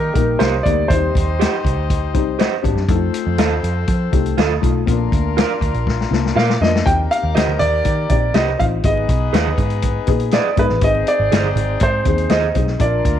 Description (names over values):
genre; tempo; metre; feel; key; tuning
uptempo 1960s-style soul; 121 BPM; 4/4; straight; unclear; A4 = 441 Hz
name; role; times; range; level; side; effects
warm concert grand piano; melody; 0.0-2.6, 6.4-13.2 s; Bb4 to G5; -20 LUFS; right 1 dB; none
warm horn section; second line; 0.0-13.2 s; G3 to Eb5; -27 LUFS; left 10 dB; none
vintage muted picked electric bass; bass; 0.0-13.2 s; G1 to F3; -20 LUFS; right 1 dB; none
dark upright piano; accompaniment; 0.2-13.2 s; G3 to Cb5; -24 LUFS; left 13 dB; none
vintage drum kit; drums; 0.2-13.2 s; hi-hat, kick drum, snare drum; -20 LUFS; left 1 dB; none
electric guitar through a small old amp; stabs; 0.4-12.5 s; F4 to Eb5; -24 LUFS; right 13 dB; spring reverb
congas; percussion; 7.5-12.9 s; none; -29 LUFS; right 7 dB; none
room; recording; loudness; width
light reverb, small room ambience; 1960s-style stereo with parts hard left and right; -15 LUFS; side -10 dB against mid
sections
0.0-13.2 A section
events
drum fill 5.9-6.9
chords
0.0 Eb; 0.9 Cm; 2.9 F7; 4.9 Bb; 6.9 Eb6; 8.8 Abm; 10.8 Ab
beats
0.40 | 0.90 1.40 1.89 2.39 | 2.89 3.39 3.88 4.38 | 4.88 5.38 5.87 6.37 | 6.87 7.36 7.86 8.35 | 8.85 9.34 9.84 10.33 | 10.82 11.32 11.81 12.31 | 12.80